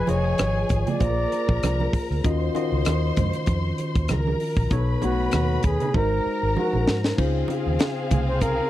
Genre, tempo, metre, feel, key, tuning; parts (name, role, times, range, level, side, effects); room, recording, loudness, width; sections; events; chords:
lush 1970s-style soul; 97 BPM; 4/4; swing 54% on 16ths; A4 = 439 Hz
breathy flugelhorn; melody; 0.0-8.7 s; Gb4 to D5; -27 LUFS; equal
warm studio violin section; second line; 0.0-8.7 s; C4 to C6; -30 LUFS; left 1 dB; slapback echo
barky tine electric piano; accompaniment; 0.0-8.7 s; B2 to Eb5; -27 LUFS; left 2 dB; overdrive, phaser
vintage muted fingered electric bass; bass; 0.1-8.6 s; F1 to Ab2; -25 LUFS; equal
tight funk drum kit; drums; 0.1-8.6 s; crash cymbal, hi-hat, kick drum, rim click, snare drum; -24 LUFS; equal
congas; percussion; 0.1-8.6 s; -31 LUFS; right 5 dB
little or no reverb; dry, close 1970s-style studio recording; -20 LUFS; side -14 dB against mid
0.0-7.2 A section; 7.2-8.7 B section
drum fill 6.0-7.2
0.0 Fm7b5; 1.0 Bb7; 2.2 Ebm7; 4.7 B9; 6.0 Ab9; 7.2 Dbmaj9